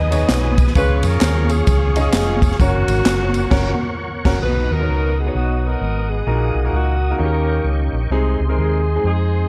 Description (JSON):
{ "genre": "uptempo gospel", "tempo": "130 BPM", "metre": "4/4", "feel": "swing 62% on 8ths", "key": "unclear", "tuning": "A4 = 440 Hz", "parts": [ { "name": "dark saxophone section", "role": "melody", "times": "0.0-9.5 s", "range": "A#3 to D#5", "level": "-26 LUFS", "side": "equal", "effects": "none" }, { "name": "tonewheel organ", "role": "sustained chords", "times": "0.0-9.5 s", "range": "B3 to D#6", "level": "-31 LUFS", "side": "equal", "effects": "fast rotary speaker, chorus vibrato" }, { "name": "hollow-body short-scale fingered electric bass", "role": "bass", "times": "0.0-9.4 s", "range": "E#1 to E#2", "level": "-21 LUFS", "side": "equal", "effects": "none" }, { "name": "bright grand piano", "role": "accompaniment", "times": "0.1-9.5 s", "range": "A#2 to D#5", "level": "-26 LUFS", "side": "equal", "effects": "none" }, { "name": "swinging big-band drum kit", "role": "drums", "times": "0.1-4.4 s", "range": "crash cymbal, kick drum, ride cymbal, snare drum", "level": "-21 LUFS", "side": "equal", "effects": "none" }, { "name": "tambourine and handclaps", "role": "percussion", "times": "0.1-3.4 s", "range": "none", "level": "-33 LUFS", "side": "equal", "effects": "none" } ], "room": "little or no reverb", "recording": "dark, warm production", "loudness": "-18 LUFS", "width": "mono", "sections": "0.0-4.4 A section; 4.4-9.5 B section", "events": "band accent 3.5-4.4", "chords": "0.0 G#m; 0.8 C#; 2.6 F#; 4.4 B; 6.3 D#m/A#; 7.2 D#7; 8.1 G#/B#" }